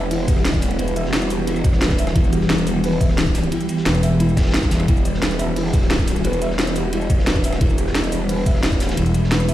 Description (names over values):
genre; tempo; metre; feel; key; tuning
dark technical drum and bass; 176 BPM; 4/4; straight; E minor; A4 = 440 Hz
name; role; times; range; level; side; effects
swarming drone; sustained chords; 0.0-9.5 s; E3 to G4; -24 LUFS; equal; built-in reverb, sidechain pumping
growl bass; bass; 0.0-9.0 s; E1; -23 LUFS; equal; chorus, overdrive, sidechain pumping
felt-muted upright piano; arpeggios; 0.1-9.5 s; E4 to E5; -27 LUFS; equal; sidechain pumping, digital delay
crunchy breakbeat drum kit; drums; 0.1-9.5 s; hi-hat, ride cymbal, snare drum; -32 LUFS; equal; high-pass filter on cymbals, high-pass filter on hats, high-pass filter on snare, high-pass filter on room
drum and bass drum kit; drums; 0.1-9.5 s; hi-hat, rim click, shaker, snare drum; -24 LUFS; equal; overdrive
electronic kick drum; drums; 0.3-8.8 s; none; -18 LUFS; equal; overdrive
growling FM bass; bass; 3.9-4.9, 9.0-9.5 s; E1; -17 LUFS; equal; none
room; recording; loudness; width
light reverb, studio reverb; played on a big sound system in a bare room, stone room reverb; -16 LUFS; side -13 dB against mid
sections
0.0-9.5 A section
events
none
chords
0.0 Emadd9